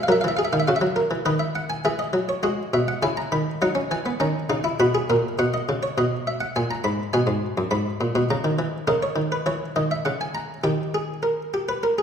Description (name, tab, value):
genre	classical, baroque-style 3-part fugue for harpsichord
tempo	102 BPM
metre	3/4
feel	straight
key	E major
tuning	A4 = 440 Hz
part	buff-stop harpsichord	solo	0.0-12.0 s	F#2 to B5	-21 LUFS	equal	none
room	wet recital hall reverb, RT60 1.7 s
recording	heard from further back in the room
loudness	-21 LUFS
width	side -7 dB against mid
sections	0.0-1.8 A section; 1.8-12.0 B section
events	none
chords	0.1 F#; 1.3 B/D#; 1.8 E; 3.0 A#dim/C#; 3.6 D#m; 4.8 G#m/B; 5.4 B; 6.6 G#madd9; 7.1 G#m; 8.3 C#m69; 8.9 A#dim/C#; 10.7 D#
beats	| 0.08 0.67 1.26 | 1.85 2.44 3.04 | 3.62 4.21 4.80 | 5.39 5.97 6.56 | 7.14 7.72 8.30 | 8.89 9.47 10.06 | 10.65 11.25 11.84